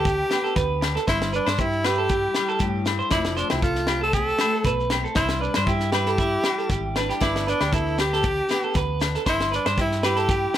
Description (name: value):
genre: highlife guitar band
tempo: 117 BPM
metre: 4/4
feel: straight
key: C major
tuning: A4 = 440 Hz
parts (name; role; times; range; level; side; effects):
- breathy tenor saxophone; melody; 0.0-10.6 s; D4 to A4; -25 LUFS; equal; none
- picked steel-string acoustic guitar; accompaniment; 0.0-10.6 s; F2 to E4; -33 LUFS; left 6 dB; none
- clean electric guitar; arpeggios; 0.0-10.6 s; E4 to D5; -26 LUFS; right 4 dB; lush chorus
- hollow-body short-scale fingered electric bass; bass; 0.0-10.5 s; F1 to G2; -28 LUFS; equal; none
- tight funk drum kit; drums; 0.1-10.6 s; kick drum, snare drum; -27 LUFS; equal; none
- shekere; percussion; 0.1-10.4 s; none; -33 LUFS; right 2 dB; none
- agogo bells; percussion; 0.3-10.2 s; none; -31 LUFS; left 13 dB; none
room: light reverb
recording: none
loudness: -20 LUFS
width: side -11 dB against mid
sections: 0.0-10.6 A section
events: none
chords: 0.0 Gadd9; 1.1 C/G; 3.1 F; 5.2 Cadd9; 7.2 Gadd9; 9.3 C/G